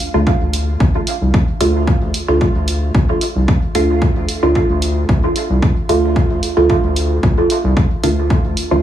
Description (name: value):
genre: dub techno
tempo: 112 BPM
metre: 4/4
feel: swing 53% on 16ths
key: D minor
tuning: A4 = 439 Hz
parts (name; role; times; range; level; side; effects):
- filtered dub chord stab; stabs; 0.0-8.8 s; D3 to F4; -17 LUFS; right 2 dB; chorus, phaser, sidechain pumping, dub echo
- electronic hi-hat; drums; 0.0-8.7 s; none; -25 LUFS; right 2 dB; none
- round analog bass; bass; 0.1-8.8 s; C2 to D2; -17 LUFS; equal; tube saturation, sidechain pumping
- electronic kick drum; drums; 0.3-8.4 s; none; -16 LUFS; equal; none
room: light reverb, digital ambience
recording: heavily compressed radio sound, studio reverb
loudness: -13 LUFS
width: side -11 dB against mid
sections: 0.0-8.8 A section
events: filter sweep on synth stab 0.0-8.8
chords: 0.0 Dm